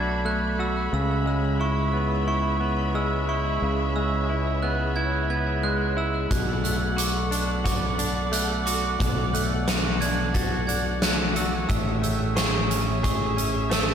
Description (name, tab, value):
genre	post-rock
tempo	89 BPM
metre	4/4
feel	straight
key	B dorian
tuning	A4 = 437 Hz
part	dark chamber string section	sustained chords	0.0-13.9 s	G#4 to B5	-33 LUFS	left 1 dB	none
part	clean electric guitar	arpeggios	0.0-13.9 s	A2 to G#4	-28 LUFS	equal	tape echo
part	glockenspiel with brass mallets	arpeggios	0.0-13.9 s	C#6 to A6	-30 LUFS	right 4 dB	tape echo, slapback echo
part	growling fingered electric bass	bass	0.0-13.9 s	A1 to C#2	-27 LUFS	equal	overdrive
part	huge arena drum kit	drums	6.3-13.9 s	hi-hat, kick drum, snare drum	-26 LUFS	equal	none
room	moderate concert hall reverb, RT60 2.0 s, small room ambience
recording	big arena sound, faint mains hum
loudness	-22 LUFS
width	side -8 dB against mid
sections	0.0-13.9 A section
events	none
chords	0.0 Bm7; 0.9 C#m7; 6.3 Bm7; 11.7 Amaj7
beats	0.25 | 0.93 1.60 2.28 2.95 | 3.62 4.30 4.97 5.64 | 6.32 6.99 7.66 8.33 | 9.00 9.68 10.35 11.02 | 11.69 12.37 13.04 13.71